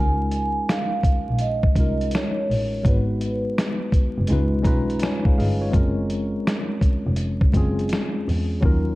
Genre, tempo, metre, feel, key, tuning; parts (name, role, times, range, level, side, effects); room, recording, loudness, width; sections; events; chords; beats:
lo-fi hip hop; 83 BPM; 4/4; swing 66% on 16ths; Db major; A4 = 442 Hz
vibraphone with soft mallets; melody; 0.0-4.3 s; Cb5 to Ab5; -27 LUFS; right 2 dB
tine electric piano; accompaniment; 0.0-9.0 s; Gb3 to Bb5; -25 LUFS; left 1 dB; medium stereo tremolo, cassette tape
dark double bass; bass; 0.0-9.0 s; F1 to Fb2; -24 LUFS; equal
dusty soul sampler-style drum kit; drums; 0.3-8.8 s; finger snaps, hi-hat, kick drum, snare drum; -21 LUFS; equal
light reverb; dark, warm production, vinyl crackle; -19 LUFS; side -19 dB against mid
0.0-9.0 A section
tine electric piano fill 4.3-5.7; hi-hats muted 8.6-9.0
0.0 Db6; 2.8 Abm7; 4.3 Db7; 5.7 Gbmaj9#11
0.67 1.40 2.12 | 2.84 3.56 4.29 5.01 | 5.73 6.46 7.18 7.90 | 8.62